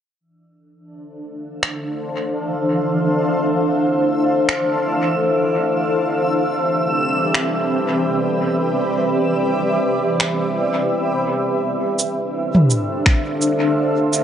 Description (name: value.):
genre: ambient dub.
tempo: 84 BPM.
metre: 4/4.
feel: swing 56% on 16ths.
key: D dorian.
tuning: A4 = 445 Hz.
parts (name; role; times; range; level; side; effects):
granular cloud pad; sustained chords; 1.2-14.2 s; C4 to F5; -18 LUFS; equal; built-in reverb.
backwards swelling texture; texture; 2.4-11.6 s; E3 to E6; -25 LUFS; right 1 dB; built-in reverb.
organic electronic drum kit; drums; 1.6-14.2 s; cabasa, finger snaps, toms; -20 LUFS; equal; dub echo.
electronic kick drum; drums; 13.1-13.2 s; none; -15 LUFS; equal; none.
room: moderate spring reverb, RT60 2.6 s.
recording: echo-heavy mix, nothing above 10.3 kHz.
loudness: -16 LUFS.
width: side -9 dB against mid.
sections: 0.2-11.6 A section; 11.6-14.2 B section.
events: none.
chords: 0.2 Dm7; 5.9 Cmaj7; 11.6 Dm7.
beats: | 0.20 0.92 1.63 2.34 | 3.06 3.77 4.49 5.20 | 5.92 6.63 7.34 8.06 | 8.77 9.49 10.20 10.92 | 11.63 12.34 13.06 13.77.